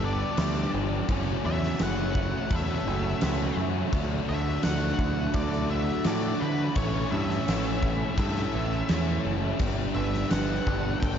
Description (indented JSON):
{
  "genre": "rock, shoegaze and dream pop",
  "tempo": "84 BPM",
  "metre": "4/4",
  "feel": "straight",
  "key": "D major",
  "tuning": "A4 = 440 Hz",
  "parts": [
    { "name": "octave-fuzz lead guitar", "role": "melody", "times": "0.0-11.2 s", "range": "B4 to G5", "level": "-35 LUFS", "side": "left 2 dB", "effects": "distortion, diffuse ambient delay" },
    { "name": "electric guitar through a small old amp", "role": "arpeggios", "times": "0.0-11.2 s", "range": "F#3 to A4", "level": "-36 LUFS", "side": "equal", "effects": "analog chorus, diffuse ambient delay" },
    { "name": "biting overdriven guitar", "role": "riff", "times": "0.0-11.2 s", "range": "F#2 to A4", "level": "-33 LUFS", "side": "left 9 dB", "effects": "wide subtle chorus" },
    { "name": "overdriven semi-hollow guitar", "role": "riff", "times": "0.0-11.2 s", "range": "F#2 to E4", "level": "-32 LUFS", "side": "right 9 dB", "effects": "reverse reverb" },
    { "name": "growling picked electric bass", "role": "bass", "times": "0.0-11.2 s", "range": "F#1 to D3", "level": "-30 LUFS", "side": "equal", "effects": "overdrive" },
    { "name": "huge arena drum kit", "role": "drums", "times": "0.4-11.2 s", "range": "crash cymbal, kick drum, snare drum", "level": "-30 LUFS", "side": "equal", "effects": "none" }
  ],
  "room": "moderate huge ambient reverb, RT60 6.7 s",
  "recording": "dreamy mix soaked in reverb, nothing above 7.5 kHz",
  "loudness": "-24 LUFS",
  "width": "side -8 dB against mid",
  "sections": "0.0-11.2 A section",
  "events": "none",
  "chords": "0.0 Gadd9; 1.1 F#m7; 3.9 Dadd9; 6.8 A; 9.6 G"
}